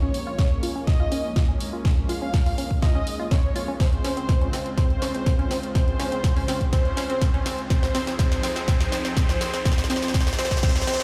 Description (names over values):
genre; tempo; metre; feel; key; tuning
progressive house; 123 BPM; 4/4; straight; unclear; A4 = 440 Hz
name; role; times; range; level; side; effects
unison lead; melody; 0.0-11.0 s; C5 to F5; -34 LUFS; equal; dub echo
clear studio violin section; second line; 0.0-11.0 s; C5 to F5; -40 LUFS; equal; none
supersaw pad; sustained chords; 0.0-11.0 s; Db3 to Ab4; -37 LUFS; equal; sidechain pumping, low-pass filter
unison pluck; arpeggios; 0.0-11.0 s; C4 to F4; -34 LUFS; equal; sidechain pumping, dub echo
dark detuned saw bass; bass; 0.0-11.0 s; Ab1 to F2; -42 LUFS; equal; none
house drum kit; drums; 0.1-11.0 s; hi-hat, snare drum; -35 LUFS; equal; high-pass filter on snare, high-pass filter on hats
electronic kick drum; drums; 0.4-10.7 s; none; -24 LUFS; equal; none
riser; sound effects; 5.9-11.0 s; none; -40 LUFS; equal; none
room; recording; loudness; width
light reverb, digital ambience; played on a big sound system in a bare room, large studio reverb; -23 LUFS; mono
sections
0.0-11.0 A section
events
build-up 0.0-11.0; drum fill 0.0-11.0; filter sweep on synth pluck 0.0-11.0; filter sweep on supersaw synth 0.0-11.0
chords
0.0 Bbm7; 3.8 Dbmaj7; 7.7 Fm7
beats
0.39 0.87 1.36 | 1.85 2.34 2.83 3.31 | 3.80 4.29 4.78 5.26 | 5.75 6.24 6.73 7.21 | 7.70 8.19 8.68 9.17 | 9.65 10.14 10.63